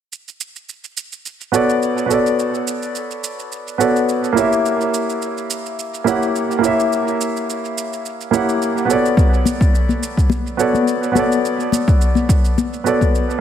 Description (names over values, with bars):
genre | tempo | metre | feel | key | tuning
sunset chillout | 106 BPM | 4/4 | swing 54% on 16ths | unclear | A4 = 440 Hz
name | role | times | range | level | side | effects
shaker | drums | 0.1-13.4 s | none | -30 LUFS | right 7 dB | overdrive, dub echo
warm concert grand piano | accompaniment | 1.5-13.4 s | A#3 to F#5 | -17 LUFS | right 1 dB | auto-pan, dub echo
electronic kick drum | drums | 9.2-13.1 s | none | -15 LUFS | equal | overdrive
congas | percussion | 9.5-13.1 s | none | -22 LUFS | left 5 dB | dub echo
room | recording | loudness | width
moderate echo chamber reverb, RT60 1.6 s, small room ambience | echo-heavy mix | -15 LUFS | side -9 dB against mid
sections
0.1-13.4 A section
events
none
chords
0.1 F#7b9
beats
| 0.12 0.69 1.26 1.82 | 2.39 2.95 3.52 4.09 | 4.65 5.22 5.78 6.35 | 6.92 7.48 8.05 8.61 | 9.18 9.75 10.31 10.88 | 11.45 12.01 12.58 13.14